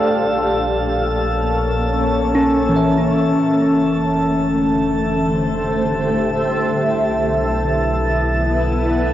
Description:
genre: ambient.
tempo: 71 BPM.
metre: 4/4.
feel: straight.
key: unclear.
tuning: A4 = 440 Hz.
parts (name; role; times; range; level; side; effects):
granular cloud pad; sustained chords; 0.0-9.1 s; D3 to F#5; -19 LUFS; equal; built-in reverb, cassette tape, shimmer reverb.
bell-like tine electric piano; arpeggios; 0.0-5.6 s; E3 to E5; -19 LUFS; equal; phaser, cassette tape, tape echo.
drifting glass-harmonics texture; texture; 0.0-9.1 s; A4 to A5; -22 LUFS; left 2 dB; chorus, built-in reverb, cassette tape, shimmer reverb.
warm sub bass; bass; 0.1-9.1 s; F1 to B1; -25 LUFS; equal; none.
room: wet spring reverb, RT60 2.0 s.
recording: home recording on cassette.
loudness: -15 LUFS.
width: side -12 dB against mid.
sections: 0.0-9.1 A section.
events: none.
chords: 0.1 Bbm; 3.4 Fmaj7; 6.8 Bm7.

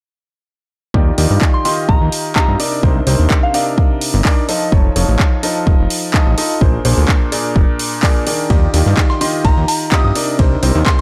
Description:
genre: piano house.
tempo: 127 BPM.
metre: 4/4.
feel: straight.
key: Eb major.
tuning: A4 = 443 Hz.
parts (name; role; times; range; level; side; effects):
bright baby grand piano; riff; 0.9-11.0 s; Bb2 to Eb5; -21 LUFS; equal; vintage 12-bit sampler grit, sidechain pumping, analog delay.
fat analog bass; bass; 0.9-10.8 s; Eb1 to G2; -17 LUFS; equal; sidechain pumping.
electronic kick drum; drums; 0.9-11.0 s; none; -16 LUFS; equal; overdrive.
house drum kit; drums; 1.2-11.0 s; handclaps, hi-hat; -23 LUFS; equal; overdrive.
soft synth bell; melody; 1.5-3.6, 9.1-11.0 s; F5 to Eb6; -23 LUFS; equal; chorus, analog delay.
breakbeat sampler-style drum kit; drums; 8.5-11.0 s; ride cymbal, snare drum; -33 LUFS; equal; none.
room: digital ambience.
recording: dry, gritty hardware recording.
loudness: -14 LUFS.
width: mono.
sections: 0.9-11.0 A section.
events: none.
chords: 0.9 Ebmaj9; 2.6 Cm9; 4.5 Faug7; 6.6 Bb9; 8.5 Ebmaj9; 10.2 Cm9.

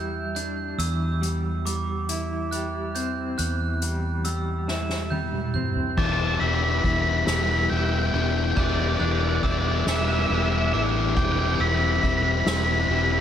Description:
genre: post-rock.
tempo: 46 BPM (dotted quarters).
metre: 6/8.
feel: straight.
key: E minor.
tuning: A4 = 436 Hz.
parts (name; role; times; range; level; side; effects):
electric guitar through a small old amp; arpeggios; 0.0-13.2 s; E3 to E4; -31 LUFS; left 1 dB; tremolo, tape echo.
glockenspiel with hard plastic mallets; arpeggios; 0.0-13.2 s; D6 to G6; -33 LUFS; right 6 dB; tape echo.
fingered electric bass; bass; 0.0-13.2 s; E1 to E2; -27 LUFS; equal; none.
soft-mallet drum kit; drums; 0.4-13.1 s; crash cymbal, hi-hat, kick drum, ride cymbal, snare drum, toms; -28 LUFS; right 1 dB; none.
octave-fuzz lead guitar; melody; 6.0-13.2 s; D5 to B5; -26 LUFS; right 1 dB; distortion, tape echo.
sludgy distorted guitar; riff; 6.0-13.2 s; E3 to E4; -27 LUFS; left 8 dB; overdrive.
room: moderate lush hall reverb, RT60 2.6 s.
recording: big arena sound.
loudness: -22 LUFS.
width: side -9 dB against mid.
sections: 0.0-6.0 A section; 6.0-13.2 B section.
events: drum fill 4.7-6.0; build-up 6.0-13.2.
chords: 0.0 Em7; 0.8 C/E; 6.0 Em7; 11.2 Cmaj7/E.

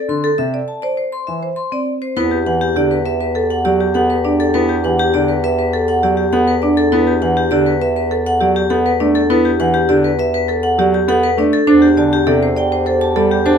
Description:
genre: classical, minimalist pattern music.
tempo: 101 BPM.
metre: 4/4.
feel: straight.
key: E minor.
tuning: A4 = 440 Hz.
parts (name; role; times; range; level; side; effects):
vibraphone with hard mallets; melody; 0.0-13.6 s; G4 to C6; -17 LUFS; left 3 dB; none.
marimba with medium mallets; arpeggios; 0.0-13.6 s; C4 to D5; -17 LUFS; right 5 dB; none.
warm grand piano; accompaniment; 0.1-13.6 s; C3 to D4; -20 LUFS; left 2 dB; none.
mellow French horn; second line; 2.2-6.7, 11.7-13.6 s; G4; -25 LUFS; right 2 dB; none.
clear bass clarinet; bass; 2.2-13.6 s; E2; -22 LUFS; left 1 dB; none.
room: light reverb.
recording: close, detailed microphones.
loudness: -13 LUFS.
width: side -7 dB against mid.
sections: 0.0-2.2 A section; 2.2-13.6 B section.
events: none.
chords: 0.0 Am; 2.2 Em11; 11.7 Dsus4/E.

